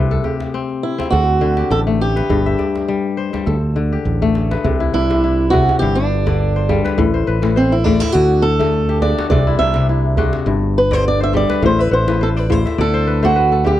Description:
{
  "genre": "west african traditional, West African string and xylophone music",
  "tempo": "103 BPM",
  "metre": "4/4",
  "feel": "swing 55% on 16ths",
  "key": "C lydian",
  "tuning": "A4 = 443 Hz",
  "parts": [
    { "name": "kora", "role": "arpeggios", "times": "0.0-13.8 s", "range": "G2 to F#5", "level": "-19 LUFS", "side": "left 6 dB", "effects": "none" },
    { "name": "modern bright fingered electric bass", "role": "bass", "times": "0.0-13.8 s", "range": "G1 to D2", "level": "-18 LUFS", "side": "right 1 dB", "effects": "none" },
    { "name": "djembe", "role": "percussion", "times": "0.1-13.8 s", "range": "none", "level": "-23 LUFS", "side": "right 2 dB", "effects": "none" },
    { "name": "fingerpicked swing-style acoustic guitar", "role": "melody", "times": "0.8-13.8 s", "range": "C4 to E5", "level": "-18 LUFS", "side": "right 2 dB", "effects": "none" }
  ],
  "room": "little or no reverb",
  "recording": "dry, close 1970s-style studio recording",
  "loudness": "-14 LUFS",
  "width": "side -13 dB against mid",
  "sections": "0.0-4.6 A section; 4.6-13.8 B section",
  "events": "drum fill 3.9-4.6; steel-string acoustic guitar solo 4.6-13.8; kora fill 11.8-13.8",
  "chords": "0.0 C5; 1.1 D; 2.3 G; 3.5 D5; 4.6 C; 5.8 G5; 7.0 Am; 8.1 D; 9.3 C; 10.5 G5; 11.6 Am69; 12.8 D5"
}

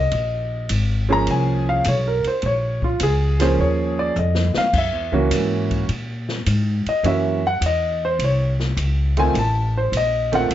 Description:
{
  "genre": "jazz piano trio",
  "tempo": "104 BPM",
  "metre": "4/4",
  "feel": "swing 69% on 8ths",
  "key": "Bb minor",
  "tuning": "A4 = 440 Hz",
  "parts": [
    { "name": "warm concert grand piano", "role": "melody", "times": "0.0-10.5 s", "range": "Eb3 to Bb5", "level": "-20 LUFS", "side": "right 1 dB", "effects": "plate reverb" },
    { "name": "upright bass", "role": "bass", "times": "0.0-10.5 s", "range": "Ab1 to Bb2", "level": "-21 LUFS", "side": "equal", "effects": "none" },
    { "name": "open jazz drum kit", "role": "drums", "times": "0.1-10.5 s", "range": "crash cymbal, hi-hat, kick drum, ride cymbal, snare drum", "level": "-29 LUFS", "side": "left 1 dB", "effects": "none" }
  ],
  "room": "light reverb",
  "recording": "dark, warm production, nothing above 7.8 kHz",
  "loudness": "-18 LUFS",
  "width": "side -12 dB against mid",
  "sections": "0.0-10.5 A section",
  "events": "grand piano solo 0.0-10.5; drum fill 4.2-4.7",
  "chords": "0.1 Bbm7; 4.7 Gb7; 9.4 F7 (rootless)"
}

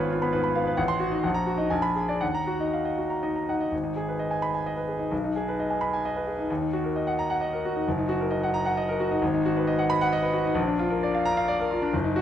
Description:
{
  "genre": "classical, virtuoso piano study",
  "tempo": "131 BPM",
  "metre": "3/4",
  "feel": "rubato",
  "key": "Eb minor, G# minor from 3.7 s",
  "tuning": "A4 = 440 Hz",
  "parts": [
    { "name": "clear grand piano", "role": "solo", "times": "0.0-12.2 s", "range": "F#1 to C6", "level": "-24 LUFS", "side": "equal", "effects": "none" }
  ],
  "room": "moderate recital hall reverb, RT60 1.7 s",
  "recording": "close, detailed microphones",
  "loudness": "-24 LUFS",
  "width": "side -10 dB against mid",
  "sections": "0.0-3.7 A section; 3.7-12.2 B section",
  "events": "none",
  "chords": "0.0 Fdim/Ab; 0.8 Adim7; 1.2 Ebm/Bb; 1.7 Bb7b9; 2.2 Ebm; 3.7 G#m; 5.1 G#m/B; 6.5 D#m; 7.9 D#m/F#; 9.2 Abm7; 10.6 Bb"
}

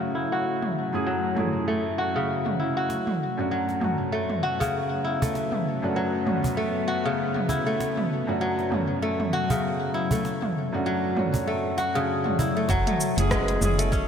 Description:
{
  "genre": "organic downtempo",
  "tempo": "98 BPM",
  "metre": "4/4",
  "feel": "swing 57% on 16ths",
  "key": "unclear",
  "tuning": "A4 = 439 Hz",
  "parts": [
    { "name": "felt-muted upright piano", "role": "accompaniment", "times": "0.0-14.1 s", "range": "F#2 to G#4", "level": "-30 LUFS", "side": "right 1 dB", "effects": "wide subtle chorus, sidechain pumping, ping-pong delay" },
    { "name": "bowed-like drone", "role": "sustained chords", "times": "0.0-14.1 s", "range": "F#3 to E4", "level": "-32 LUFS", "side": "left 2 dB", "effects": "built-in reverb, phaser, vintage 12-bit sampler grit, sidechain pumping" },
    { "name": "kora", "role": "arpeggios", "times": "0.0-14.1 s", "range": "C#3 to F#4", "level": "-26 LUFS", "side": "left 1 dB", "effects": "low-pass filter, ping-pong delay" },
    { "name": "deep house drum kit", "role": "drums", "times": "0.6-14.1 s", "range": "hi-hat, rim click, shaker, toms", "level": "-30 LUFS", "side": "right 1 dB", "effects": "overdrive, gated reverb" },
    { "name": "cajon", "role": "percussion", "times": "2.9-13.6 s", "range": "none", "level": "-30 LUFS", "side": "right 1 dB", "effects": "none" },
    { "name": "woody FM bass", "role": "bass", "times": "12.7-14.0 s", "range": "F#1", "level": "-25 LUFS", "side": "right 1 dB", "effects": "sidechain pumping" },
    { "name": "electronic kick drum", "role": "drums", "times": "12.7-14.1 s", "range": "none", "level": "-28 LUFS", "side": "right 1 dB", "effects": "overdrive" }
  ],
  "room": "moderate lush hall reverb, RT60 2.3 s",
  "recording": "bright 1980s-style digital production",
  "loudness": "-23 LUFS",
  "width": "side -7 dB against mid",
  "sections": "0.0-12.7 A section; 12.7-14.1 B section",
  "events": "none",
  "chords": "0.0 F#m7; 2.9 Bm7/F#; 12.7 F#m7"
}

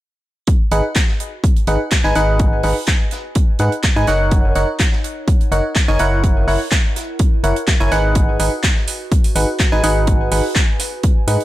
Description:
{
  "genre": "piano house",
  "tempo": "125 BPM",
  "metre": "4/4",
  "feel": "straight",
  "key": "G# minor",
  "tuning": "A4 = 441 Hz",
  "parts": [
    { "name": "electronic kick drum", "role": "drums", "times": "0.5-11.1 s", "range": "none", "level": "-15 LUFS", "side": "equal", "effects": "none" },
    { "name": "modern studio drum kit", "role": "drums", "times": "0.5-11.4 s", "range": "hi-hat, snare drum", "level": "-29 LUFS", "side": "right 4 dB", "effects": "sidechain pumping on hats, high-pass filter on hats, high-pass filter on snare, high-pass filter on room" },
    { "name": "warbly tape-like pad", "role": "texture", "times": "0.5-11.4 s", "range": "D#4 to G#5", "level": "-32 LUFS", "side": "right 1 dB", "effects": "chorus, built-in reverb, sidechain pumping" },
    { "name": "barking FM electric piano", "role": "riff", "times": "0.7-11.4 s", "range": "D#4 to G#5", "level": "-19 LUFS", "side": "equal", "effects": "chorus, sidechain pumping, ping-pong delay" },
    { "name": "organ-like FM bass", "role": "bass", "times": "0.7-11.4 s", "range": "F#1 to G#2", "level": "-18 LUFS", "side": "equal", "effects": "sidechain pumping" },
    { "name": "house drum kit", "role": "drums", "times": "1.0-11.4 s", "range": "handclaps, hi-hat", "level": "-22 LUFS", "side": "equal", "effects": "none" }
  ],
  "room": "small room ambience",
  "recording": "none",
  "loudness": "-14 LUFS",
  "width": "side -15 dB against mid",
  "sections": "0.5-11.4 A section",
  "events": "fade-in on ambient pad 0.5-11.4",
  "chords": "0.5 G#m7; 4.1 D#m7/F#; 6.2 F#7; 8.2 G#m7"
}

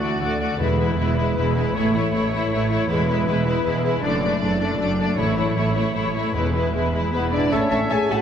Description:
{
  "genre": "cinematic, heroic adventure film score",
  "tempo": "156 BPM",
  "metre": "3/4",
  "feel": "straight",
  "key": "A major",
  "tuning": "A4 = 441 Hz",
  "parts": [
    { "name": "dark symphonic violin section", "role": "melody", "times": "0.0-8.2 s", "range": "B4 to G#5", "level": "-26 LUFS", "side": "left 4 dB", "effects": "none" },
    { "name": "warm studio violin section", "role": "second line", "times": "0.0-8.2 s", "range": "D4 to A5", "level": "-26 LUFS", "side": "left 2 dB", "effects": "none" },
    { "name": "rich symphonic viola section", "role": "accompaniment", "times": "0.0-8.2 s", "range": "G#3 to A4", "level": "-27 LUFS", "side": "right 2 dB", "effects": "none" },
    { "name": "concert harp", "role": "arpeggios", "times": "0.0-8.2 s", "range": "E2 to B4", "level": "-30 LUFS", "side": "left 5 dB", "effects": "none" },
    { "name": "rich symphonic cello section", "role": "bass", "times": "0.0-8.2 s", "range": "D2 to A2", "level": "-27 LUFS", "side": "right 3 dB", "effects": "none" },
    { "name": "warm symphonic double bass section", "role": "bass", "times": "0.0-8.2 s", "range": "E1 to D2", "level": "-27 LUFS", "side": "right 4 dB", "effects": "none" },
    { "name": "timpani", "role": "percussion", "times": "0.6-1.1, 5.2-6.9 s", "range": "E2 to A2", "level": "-29 LUFS", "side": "equal", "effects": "none" },
    { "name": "clear French horn section", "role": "sustained chords", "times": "7.1-8.2 s", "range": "B3 to G#4", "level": "-23 LUFS", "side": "equal", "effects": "none" },
    { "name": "bright oboe", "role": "second line", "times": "7.5-8.2 s", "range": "E5", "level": "-28 LUFS", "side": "right 1 dB", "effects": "none" },
    { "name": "clear clarinet", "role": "second line", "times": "7.5-8.2 s", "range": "C#5", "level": "-30 LUFS", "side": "left 1 dB", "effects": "none" },
    { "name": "mellow hollow concert flute", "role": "second line", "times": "7.5-8.2 s", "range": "A5", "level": "-29 LUFS", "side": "left 1 dB", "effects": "none" }
  ],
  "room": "wet concert hall reverb, RT60 2.5 s",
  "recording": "none",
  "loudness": "-19 LUFS",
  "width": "side -8 dB against mid",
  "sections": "0.0-7.5 A section",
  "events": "build-up 0.0-7.5",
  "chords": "0.0 D; 0.6 E; 1.8 A; 2.9 E; 4.0 D/F#; 5.2 A; 6.3 E; 7.5 A"
}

